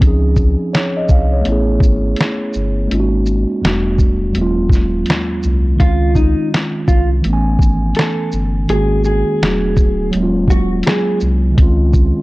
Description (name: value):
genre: lo-fi hip hop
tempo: 83 BPM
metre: 4/4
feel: swing 62% on 16ths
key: Db major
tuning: A4 = 440 Hz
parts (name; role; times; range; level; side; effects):
- mellow tine electric piano; accompaniment; 0.0-12.2 s; Eb2 to G#5; -17 LUFS; equal; slow stereo tremolo, cassette tape, low-pass filter
- soft dub sub bass; bass; 0.0-12.1 s; D1 to Db2; -17 LUFS; equal; transformer saturation
- lo-fi sampler-style drum kit; drums; 0.0-12.1 s; finger snaps, hi-hat, kick drum, shaker, snare drum; -14 LUFS; equal; none
- mellow electric guitar; melody; 5.8-11.2 s; Eb4 to A4; -20 LUFS; equal; low-pass filter
room: light reverb, digital ambience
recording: dry, gritty hardware recording, cassette tape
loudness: -12 LUFS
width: side -20 dB against mid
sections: 0.0-12.2 A section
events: none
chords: 0.0 Dbmaj9; 1.5 Amaj9; 2.9 Ab9sus4; 3.6 Em11; 4.3 Ebm11; 5.8 Dbmaj9; 7.2 Amaj9; 8.7 Ab9sus4; 9.4 E9sus4; 10.1 Ebm11; 11.6 Dbmaj9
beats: | 0.01 0.73 1.46 2.18 | 2.90 3.63 4.35 5.07 | 5.79 6.52 7.24 7.96 | 8.69 9.41 10.13 10.86 | 11.58